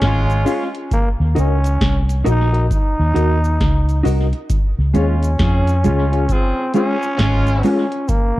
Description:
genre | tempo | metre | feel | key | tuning
roots reggae | 67 BPM | 4/4 | swing 62% on 16ths | Db major | A4 = 440 Hz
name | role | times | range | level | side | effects
growling trombone | melody | 0.0-8.4 s | Bb3 to Eb4 | -22 LUFS | equal | dub echo
clear horn section | second line | 0.0-7.9 s | Db3 to Ab4 | -26 LUFS | right 2 dB | dub echo
vintage muted fingered electric bass | bass | 0.0-8.4 s | Ab1 to F2 | -16 LUFS | equal | none
booming analog drum machine | drums | 0.0-8.3 s | hi-hat, kick drum, snare drum | -18 LUFS | equal | none
cabasa | percussion | 0.3-8.3 s | none | -41 LUFS | right 4 dB | none
bright reed electric piano | stabs | 0.4-7.8 s | F4 to F5 | -26 LUFS | left 8 dB | fast tremolo
mellow electric guitar | accompaniment | 0.5-7.8 s | Ab3 to Bb4 | -22 LUFS | right 1 dB | dub echo
room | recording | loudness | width
light reverb, digital ambience | echo-heavy mix, cassette tape | -14 LUFS | side -16 dB against mid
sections
0.0-8.4 A section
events
none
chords
0.0 Db; 0.9 Ebm; 4.5 Db

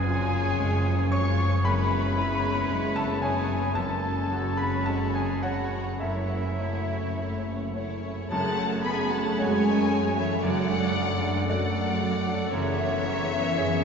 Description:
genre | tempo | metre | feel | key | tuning
cinematic, emotional film score for orchestra | 51-58 BPM | 4/4 | rubato | F# minor | A4 = 441 Hz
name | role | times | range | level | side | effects
warm symphonic violin section | melody | 0.0-13.8 s | E5 to C#6 | -35 LUFS | left 4 dB | none
clear oboe | second line | 0.0-13.8 s | E4 to D5 | -36 LUFS | right 1 dB | none
mellow hollow large flute ensemble | second line | 0.0-13.8 s | E5 to C#6 | -34 LUFS | left 2 dB | none
bright baby grand piano | accompaniment | 0.0-13.8 s | F#1 to C#6 | -32 LUFS | equal | none
dark French horn section | sustained chords | 0.0-13.8 s | E#3 to D4 | -33 LUFS | left 5 dB | none
rich symphonic double bass section | bass | 0.0-13.8 s | F#1 to F#2 | -32 LUFS | right 1 dB | none
warm symphonic cello section | bass | 0.0-13.8 s | F#2 to B3 | -29 LUFS | right 2 dB | none
warm symphonic violin section | second line | 0.1-13.8 s | E4 to G#5 | -37 LUFS | left 2 dB | none
warm symphonic viola section | accompaniment | 0.1-13.8 s | G#3 to B4 | -35 LUFS | right 1 dB | none
dark clarinet | second line | 8.3-13.8 s | G#4 to A4 | -36 LUFS | right 3 dB | none
room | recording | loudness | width
wet cathedral reverb, RT60 6.1 s | heard from further back in the room, nothing above 7.8 kHz | -24 LUFS | side -6 dB against mid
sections
0.0-8.3 A section; 8.3-13.8 B section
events
none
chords
0.0 C#/F#; 1.7 E6/F#; 3.8 F#sus2; 6.0 A/F#; 8.3 F#madd9; 10.4 D/F#; 12.5 E6/F#

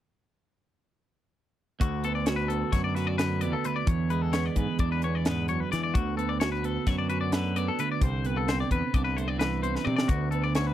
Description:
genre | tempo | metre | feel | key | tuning
math rock and midwest emo | 260 BPM (eighths) | 9/8 | straight | D lydian | A4 = 440 Hz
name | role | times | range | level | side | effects
twelve-string electric guitar | accompaniment | 1.8-10.7 s | D2 to F#4 | -31 LUFS | right 7 dB | none
twangy electric guitar | arpeggios | 1.8-10.7 s | F#4 to D5 | -32 LUFS | left 8 dB | none
growling fingered electric bass | bass | 1.8-10.7 s | C2 to E3 | -30 LUFS | left 1 dB | overdrive
crisp fusion drum kit | drums | 1.8-10.7 s | hi-hat, kick drum, snare drum, toms | -28 LUFS | equal | none
room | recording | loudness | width
little or no reverb | dry, close 1970s-style studio recording | -25 LUFS | side -12 dB against mid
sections
1.8-10.7 A section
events
drum fill 9.8-10.1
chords
1.8 D6; 3.9 E9; 5.9 D6; 8.0 Cmaj9; 10.1 D6

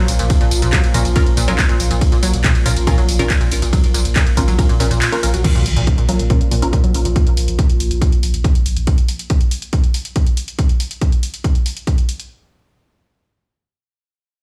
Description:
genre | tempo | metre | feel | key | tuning
driving peak-time techno | 140 BPM | 4/4 | straight | Bb minor | A4 = 440 Hz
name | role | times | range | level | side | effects
analog pluck | riff | 0.0-7.1 s | Bb2 to Gb3 | -25 LUFS | equal | chorus, overdrive, sidechain pumping, tape echo
analog drone | drone | 0.0-8.9 s | Bb2 to F3 | -28 LUFS | equal | chorus, sidechain pumping
saturated sub bass | bass | 0.1-8.9 s | Bb1 | -20 LUFS | equal | overdrive, sidechain pumping, low-pass filter
punchy analog drum machine | drums | 0.1-12.3 s | crash cymbal, handclaps, hi-hat, ride cymbal, tambourine | -26 LUFS | equal | sidechain pumping on hats, sidechain pumping on cymbals, sidechain pumping on perc
electronic kick drum | drums | 0.3-12.0 s | none | -17 LUFS | equal | overdrive
filtered dub chord stab | stabs | 0.9-6.8 s | Db4 to Bb4 | -27 LUFS | equal | phaser, analog chorus, sidechain pumping, digital delay
impact | sound effects | 5.4-7.2 s | none | -26 LUFS | equal | none
room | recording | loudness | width
little or no reverb | studio reverb | -16 LUFS | mono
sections
0.0-5.4 A section; 5.4-12.3 B section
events
drop 0.0-5.4; kick drops out 5.0-5.4; impact 5.4-7.2; filter sweep on synth arpeggio sound 5.4-7.2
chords
0.0 Bbm

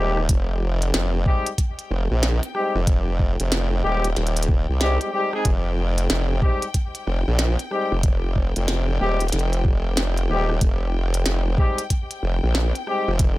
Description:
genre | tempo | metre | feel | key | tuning
glitch hop | 93 BPM | 4/4 | swing 63% on 16ths | F minor | A4 = 440 Hz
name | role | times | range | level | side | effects
mellow horn section | stabs | 0.0-13.1 s | G3 to Ab4 | -25 LUFS | left 2 dB | sidechain pumping, tape echo
formant-sweep wobble bass | bass | 0.0-13.4 s | Eb1 to C2 | -21 LUFS | equal | chorus, overdrive
clear studio string section | texture | 0.0-13.4 s | G5 | -36 LUFS | left 5 dB | sidechain pumping
glitchy drum kit | drums | 0.2-13.4 s | hi-hat, rim click, snare drum | -27 LUFS | equal | none
electronic kick drum | drums | 0.3-13.4 s | none | -20 LUFS | equal | none
room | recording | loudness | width
little or no reverb | none | -19 LUFS | side -18 dB against mid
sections
0.0-13.4 A section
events
fade-in on string section 0.0-13.4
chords
0.0 Fm9

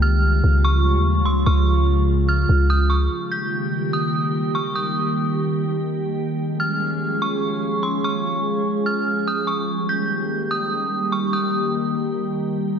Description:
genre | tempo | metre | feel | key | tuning
hip hop, atmospheric cloud-rap | 146 BPM | 4/4 | half-time | unclear | A4 = 440 Hz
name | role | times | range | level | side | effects
dark detuned synth bell | melody | 0.0-11.7 s | C6 to G6 | -24 LUFS | right 1 dB | chorus, low-pass filter, analog delay
glassy FM pad | sustained chords | 0.0-12.8 s | Db3 to Ab4 | -22 LUFS | equal | ensemble chorus, built-in reverb
warm 808-style bass | bass | 0.0-3.1 s | Db2 to Eb2 | -17 LUFS | equal | none
room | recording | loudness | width
wet lush hall reverb, RT60 1.8 s | dreamy mix soaked in reverb | -18 LUFS | side -7 dB against mid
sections
0.0-3.1 A section; 3.1-12.8 B section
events
none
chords
0.0 Db; 3.1 Eb; 6.4 Db; 9.7 Eb

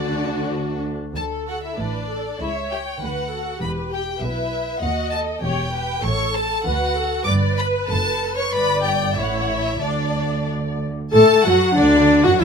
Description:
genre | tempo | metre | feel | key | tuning
quick classical-period movement for string orchestra | 89-100 BPM | 2/4 | rubato | D major | A4 = 440 Hz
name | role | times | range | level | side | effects
rich chamber violin section | melody | 0.0-12.4 s | F#4 to D6 | -26 LUFS | left 2 dB | none
rich symphonic violin section | second line | 0.0-12.4 s | D4 to A5 | -27 LUFS | left 1 dB | none
dark chamber viola section | accompaniment | 0.0-12.4 s | D4 to D#5 | -21 LUFS | left 1 dB | none
rich chamber double bass section | bass | 0.0-12.4 s | E1 to A2 | -26 LUFS | right 2 dB | none
warm chamber cello section | bass | 0.0-12.4 s | D#2 to A3 | -28 LUFS | equal | none
room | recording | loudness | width
light reverb | none | -18 LUFS | side -6 dB against mid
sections
0.0-1.2 A section; 1.2-11.1 A section; 11.1-12.4 A section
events
none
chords
0.0 D; 1.2 D5; 2.4 C#dim; 3.0 D; 3.6 Em; 4.8 D#dim; 5.4 Em; 6.1 A; 6.7 D; 7.3 G; 7.9 F#madd11; 8.5 G; 9.2 A; 9.8 N.C.; 11.1 D

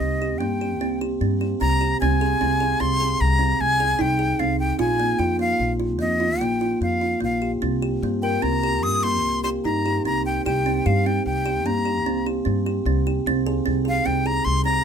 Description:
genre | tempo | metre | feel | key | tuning
contemporary instrumental, chamber music in an uneven meter | 150 BPM | 7/4 | straight | C minor | A4 = 442 Hz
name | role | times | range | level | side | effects
breathy bright jazz flute | melody | 0.0-14.8 s | Eb5 to Eb6 | -23 LUFS | left 2 dB | none
kalimba | arpeggios | 0.0-14.8 s | Bb3 to Bb4 | -23 LUFS | right 2 dB | none
upright bass | bass | 0.0-14.8 s | Bb1 to G2 | -25 LUFS | left 1 dB | none
room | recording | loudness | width
light reverb | close, detailed microphones | -20 LUFS | side -7 dB against mid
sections
0.0-14.8 A section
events
none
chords
0.0 C5; 2.0 Abmaj7/C; 4.8 Bb5; 7.6 C7(no3); 13.3 Abadd9/C

